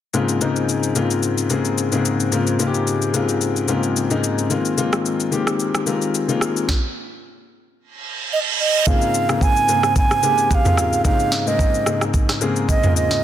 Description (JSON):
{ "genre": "amapiano", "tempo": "110 BPM", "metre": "4/4", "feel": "swing 55% on 16ths", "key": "unclear", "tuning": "A4 = 440 Hz", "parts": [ { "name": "warm grand piano", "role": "accompaniment", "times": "0.1-13.2 s", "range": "Ab2 to Ab4", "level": "-20 LUFS", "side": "left 3 dB", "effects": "none" }, { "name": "afro-pop drum kit", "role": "drums", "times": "0.1-13.2 s", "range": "kick drum, rim click, shaker, snare drum, toms", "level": "-21 LUFS", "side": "equal", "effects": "soft clipping on snare" }, { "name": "reverse cymbal", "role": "sound effects", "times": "8.0-8.9 s", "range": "none", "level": "-21 LUFS", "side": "right 8 dB", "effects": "none" }, { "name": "breathy alto ocarina", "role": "melody", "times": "8.3-13.2 s", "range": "Eb5 to Ab5", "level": "-19 LUFS", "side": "right 4 dB", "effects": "digital delay" } ], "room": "light reverb", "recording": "dense, heavily limited modern master", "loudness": "-17 LUFS", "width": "side -10 dB against mid", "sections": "0.1-8.9 A section; 8.9-13.2 B section", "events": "stop 6.7-8.9; reverse cymbal 8.0-8.9", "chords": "0.1 Bbm7/Ab; 4.5 Ab69; 8.9 Bbm7/Ab" }